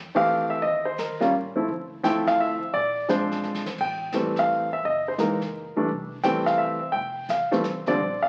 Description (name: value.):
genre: jazz piano trio.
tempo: 171 BPM.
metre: 3/4.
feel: swing 66% on 8ths.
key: F major.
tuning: A4 = 437 Hz.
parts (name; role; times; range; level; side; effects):
upright bass; bass; 0.0-8.3 s; F1 to A2; -47 LUFS; equal; none.
warm baby grand piano; melody; 0.1-8.3 s; D3 to G5; -25 LUFS; equal; none.
jazz brush drum kit; drums; 0.2-8.3 s; brushed snare drum, hi-hat, kick drum, ride cymbal, snare drum; -42 LUFS; equal; none.
room: moderate large studio reverb, RT60 1.2 s.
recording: very old 78 rpm record, vinyl crackle.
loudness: -25 LUFS.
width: mono.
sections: 0.0-8.0 A section.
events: band accent 0.1; drum fill 3.4-3.8.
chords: 0.0 Fmaj7; 0.6 Ebsus2; 1.7 Dm9; 2.7 Bb9; 3.8 Am7; 4.8 Gb13; 5.9 Fmaj7.